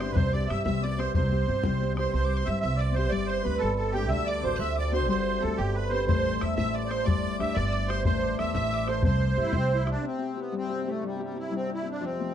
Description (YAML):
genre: celtic folk, Celtic jig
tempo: 122 BPM (dotted quarters)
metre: 6/8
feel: straight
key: C major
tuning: A4 = 440 Hz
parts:
  - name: musette accordion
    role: melody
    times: 0.0-12.3 s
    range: G3 to E5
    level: -30 LUFS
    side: right 4 dB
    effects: none
  - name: cimbalom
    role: second line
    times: 0.0-11.7 s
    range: G4 to E5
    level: -35 LUFS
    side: right 6 dB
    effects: none
  - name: clear fiddle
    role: second line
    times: 0.0-9.8 s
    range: G5 to F#6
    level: -40 LUFS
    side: left 5 dB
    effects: none
  - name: Celtic harp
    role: accompaniment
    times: 0.0-12.3 s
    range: F2 to E5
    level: -32 LUFS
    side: left 8 dB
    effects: none
  - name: upright bass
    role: bass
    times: 0.0-9.9 s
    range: G1 to G2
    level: -29 LUFS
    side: right 1 dB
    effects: none
  - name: bodhran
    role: percussion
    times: 0.0-2.0, 6.1-9.9 s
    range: none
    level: -28 LUFS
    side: left 1 dB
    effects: none
  - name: hand-pumped harmonium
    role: drone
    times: 10.0-12.3 s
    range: C3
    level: -38 LUFS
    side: right 1 dB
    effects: none
room: moderate small room ambience, RT60 0.5 s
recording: dark, warm production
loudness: -25 LUFS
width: side -10 dB against mid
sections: 0.0-2.1 A section; 2.1-10.0 A section; 10.0-12.3 B section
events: none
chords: 0.2 C; 3.1 Gsus4; 4.1 D7; 5.1 Gsus4; 6.1 Am; 7.1 Gsus4; 8.1 Am; 9.0 C